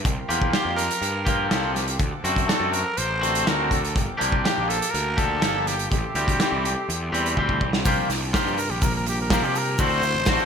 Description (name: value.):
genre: indie rock.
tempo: 123 BPM.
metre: 4/4.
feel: straight.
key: unclear.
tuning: A4 = 441 Hz.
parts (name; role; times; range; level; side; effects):
combo organ; sustained chords; 0.0-10.5 s; C3 to D6; -36 LUFS; right 1 dB; none.
fuzz picked electric bass; bass; 0.0-10.4 s; G1 to C3; -28 LUFS; equal; overdrive.
loose indie drum kit; drums; 0.1-10.4 s; hi-hat, kick drum, snare drum; -25 LUFS; equal; none.
twangy electric guitar; riff; 0.3-10.5 s; D3 to G4; -26 LUFS; left 1 dB; slapback echo.
growling trumpet; melody; 0.5-10.5 s; G4 to C5; -27 LUFS; equal; slapback echo, digital delay.
tube shaker; percussion; 7.9-10.5 s; none; -40 LUFS; right 15 dB; none.
room: moderate lush hall reverb, RT60 1.8 s, small room ambience.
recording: big arena sound.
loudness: -20 LUFS.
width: side -6 dB against mid.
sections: 0.0-7.9 A section; 7.9-10.5 B section.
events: drum fill 7.4-7.9; trumpet solo 7.9-10.5.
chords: 0.1 C7sus4; 2.0 D7; 4.0 Gm7; 5.9 Am7; 7.9 C7sus4; 9.8 D7.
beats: | 0.05 0.54 1.03 1.52 | 2.00 2.49 2.98 3.47 | 3.96 4.45 4.93 5.42 | 5.91 6.40 6.88 7.37 | 7.85 8.34 8.82 9.31 | 9.79 10.28.